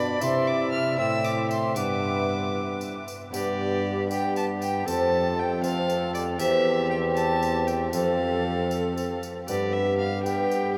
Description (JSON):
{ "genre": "classical, renaissance-style consort dance", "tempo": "78 BPM (dotted quarters)", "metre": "6/8", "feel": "straight", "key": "G mixolydian", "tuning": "A4 = 441 Hz", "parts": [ { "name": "warm violin", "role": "melody", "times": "0.0-10.8 s", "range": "D5 to F6", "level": "-34 LUFS", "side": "equal", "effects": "none" }, { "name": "bright tenor recorder", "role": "second line", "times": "0.0-10.8 s", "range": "G4 to E5", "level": "-34 LUFS", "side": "equal", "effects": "none" }, { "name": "concert harp", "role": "accompaniment", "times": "0.0-10.8 s", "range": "E2 to C5", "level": "-32 LUFS", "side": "equal", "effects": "none" }, { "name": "mellow bassoon", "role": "accompaniment", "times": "0.0-10.8 s", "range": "B3 to E4", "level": "-33 LUFS", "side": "equal", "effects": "none" }, { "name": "mellow trombone", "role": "bass", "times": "0.0-10.8 s", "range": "E2 to C3", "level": "-31 LUFS", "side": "equal", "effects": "none" }, { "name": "tambourine", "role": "percussion", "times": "0.2-10.8 s", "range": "none", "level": "-44 LUFS", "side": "equal", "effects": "none" } ], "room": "wet huge ambient reverb, RT60 7.6 s", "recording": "in a vast, echoing space", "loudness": "-26 LUFS", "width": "mono", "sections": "0.0-3.3 A section; 3.3-10.8 B section", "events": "none", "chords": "0.2 C; 1.8 G; 4.9 F; 6.4 C/E; 7.9 F; 9.5 G" }